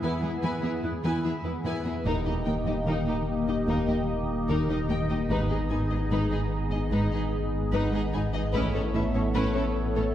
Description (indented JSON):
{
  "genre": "cinematic, hybrid orchestral and electronic film score",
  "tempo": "74 BPM",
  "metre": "4/4",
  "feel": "straight",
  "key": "unclear",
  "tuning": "A4 = 439 Hz",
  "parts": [
    { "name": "warm symphonic violin section", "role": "second line", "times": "0.0-10.0 s", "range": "D#4 to G#5", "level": "-37 LUFS", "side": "left 2 dB", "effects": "none" },
    { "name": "rich symphonic viola section", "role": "accompaniment", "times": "0.0-10.0 s", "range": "B3 to E4", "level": "-36 LUFS", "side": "right 1 dB", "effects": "none" },
    { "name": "phased analog pad", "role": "sustained chords", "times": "0.0-10.1 s", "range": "A#3 to D#5", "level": "-33 LUFS", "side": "equal", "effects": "phaser, chorus" },
    { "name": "soft round pluck", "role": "arpeggios", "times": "0.0-10.1 s", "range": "D#3 to A4", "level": "-34 LUFS", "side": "left 1 dB", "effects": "chorus" },
    { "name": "warm symphonic cello section", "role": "bass", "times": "0.0-10.0 s", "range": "D#2 to A2", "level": "-33 LUFS", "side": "right 1 dB", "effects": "none" },
    { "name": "rich studio double bass section", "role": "bass", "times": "2.0-9.4 s", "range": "G#1 to D#2", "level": "-34 LUFS", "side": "right 1 dB", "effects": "none" },
    { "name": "saturated sub bass", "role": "bass", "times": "2.0-10.1 s", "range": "D#1 to A1", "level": "-32 LUFS", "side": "equal", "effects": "none" },
    { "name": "dark symphonic violin section", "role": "melody", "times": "2.1-10.0 s", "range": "A#4 to G#5", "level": "-36 LUFS", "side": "left 4 dB", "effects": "none" },
    { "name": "mellow French horn section", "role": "sustained chords", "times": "2.1-10.1 s", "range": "A#3 to A4", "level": "-34 LUFS", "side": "left 3 dB", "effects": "none" }
  ],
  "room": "wet concert hall reverb, RT60 2.1 s",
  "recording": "heard from further back in the room",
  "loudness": "-25 LUFS",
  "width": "side -11 dB against mid",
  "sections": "0.0-2.1 A section; 2.1-10.1 B section",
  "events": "none",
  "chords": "0.0 E; 2.1 D#; 5.3 G#m; 8.5 Aadd9",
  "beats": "0.43 1.24 | 2.06 2.87 3.68 4.49 | 5.30 6.11 6.92 7.73 | 8.54 9.35"
}